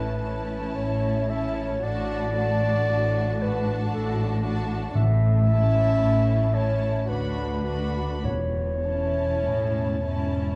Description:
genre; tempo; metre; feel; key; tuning
classical, slow romantic movement for symphony orchestra; 50-59 BPM; 3/4; rubato; A major; A4 = 439 Hz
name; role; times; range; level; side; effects
warm studio violin section; melody; 0.0-10.6 s; A5 to B5; -42 LUFS; equal; none
dark clarinet; second line; 0.0-10.6 s; A4 to E5; -30 LUFS; equal; none
warm studio violin section; second line; 0.0-10.6 s; E4 to F#4; -39 LUFS; equal; none
rich studio viola section; accompaniment; 0.0-10.6 s; C#4 to D4; -36 LUFS; equal; none
dark symphonic double bass section; bass; 0.0-10.5 s; E1 to D2; -29 LUFS; equal; none
warm studio cello section; bass; 0.0-10.6 s; D2 to A2; -31 LUFS; equal; none
timpani; percussion; 5.0-10.0 s; E2 to A2; -30 LUFS; equal; none
room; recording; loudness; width
wet recital hall reverb, RT60 1.4 s; dark, warm production; -24 LUFS; mono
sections
0.0-10.6 A section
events
none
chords
0.0 A; 1.8 D/A; 5.0 A; 7.1 Bm/D; 8.2 A/E

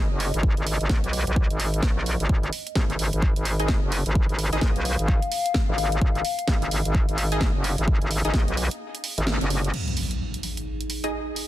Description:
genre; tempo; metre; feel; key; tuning
bass house; 129 BPM; 4/4; swing 60% on 16ths; G# dorian; A4 = 440 Hz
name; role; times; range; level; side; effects
metallic wobble bass; bass; 0.0-9.7 s; F#1 to B1; -24 LUFS; equal; chorus, sidechain pumping
warbly tape-like pad; texture; 0.0-11.5 s; D#4 to E#5; -33 LUFS; left 5 dB; chorus, built-in reverb, sidechain pumping
house drum kit; drums; 0.2-11.5 s; crash cymbal, hi-hat, snare drum; -30 LUFS; right 2 dB; none
electronic kick drum; drums; 0.4-8.5 s; none; -22 LUFS; equal; none
orchestra-hit-like synth stab; stabs; 3.6-11.1 s; D#4 to D#5; -32 LUFS; equal; built-in reverb, sidechain pumping, tape echo
impact; sound effects; 9.7-11.5 s; none; -30 LUFS; equal; none
room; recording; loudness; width
digital ambience; dense, heavily limited modern master; -22 LUFS; side -14 dB against mid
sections
0.0-9.7 A section; 9.7-11.5 B section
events
break 8.8-9.7; band accent 9.3; impact 9.7-11.5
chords
0.0 G#5

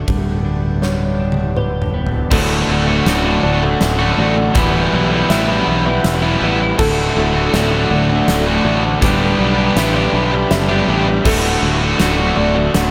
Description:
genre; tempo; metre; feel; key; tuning
post-rock; 81 BPM; 3/4; straight; D major; A4 = 440 Hz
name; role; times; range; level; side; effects
hand-pumped harmonium; sustained chords; 0.0-12.9 s; B3 to B5; -27 LUFS; equal; none
felt-muted upright piano; arpeggios; 0.0-12.9 s; A4 to E5; -28 LUFS; equal; analog chorus, delay
twelve-string electric guitar; arpeggios; 0.0-2.3 s; G2 to G4; -28 LUFS; equal; subtle chorus, delay
fingered electric bass; bass; 0.0-12.9 s; D1 to B1; -22 LUFS; equal; none
huge arena drum kit; drums; 0.1-12.9 s; crash cymbal, hi-hat, kick drum, ride cymbal, snare drum, toms; -24 LUFS; equal; none
overdriven semi-hollow guitar; riff; 2.3-12.9 s; D2 to G4; -20 LUFS; equal; none
tight distorted guitar; riff; 2.3-12.6 s; D2 to G4; -21 LUFS; equal; distortion
room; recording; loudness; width
wet huge ambient reverb, RT60 9.0 s; dreamy mix soaked in reverb; -15 LUFS; mono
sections
0.0-2.3 A section; 2.3-12.9 B section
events
drum fill 0.8-2.3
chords
0.1 G/D; 2.3 D; 4.6 Emadd9/D; 6.8 D; 9.0 G/D; 11.3 D

